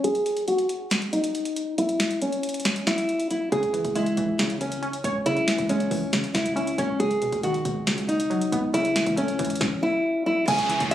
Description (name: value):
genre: hip hop, trap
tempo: 138 BPM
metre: 4/4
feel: half-time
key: C# minor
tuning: A4 = 442 Hz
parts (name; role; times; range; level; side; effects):
- nylon-string guitar; melody; 0.0-10.9 s; C#4 to G#5; -24 LUFS; equal; low-pass filter, tape echo
- trap drum kit; drums; 0.0-10.9 s; crash cymbal, hi-hat, kick drum, snare drum; -28 LUFS; equal; none
- glassy wavetable pluck; accompaniment; 3.5-10.9 s; C#2 to C#5; -29 LUFS; right 1 dB; chorus, low-pass filter
- short 808-style bass; bass; 3.5-10.9 s; C#2 to E2; -33 LUFS; equal; none
- clear chamber string section; sustained chords; 10.5-10.9 s; E3 to G#4; -32 LUFS; left 1 dB; none
- downlifter; sound effects; 10.5-10.9 s; none; -28 LUFS; equal; none
room: light reverb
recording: recorded on a phone in the room, club reverb, compression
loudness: -22 LUFS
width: side -12 dB against mid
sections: 0.0-10.5 A section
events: break 0.0-3.5; filter sweep 0.0-3.5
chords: 0.0 N.C.; 3.5 C#m; 7.0 B/C#; 8.7 A/C#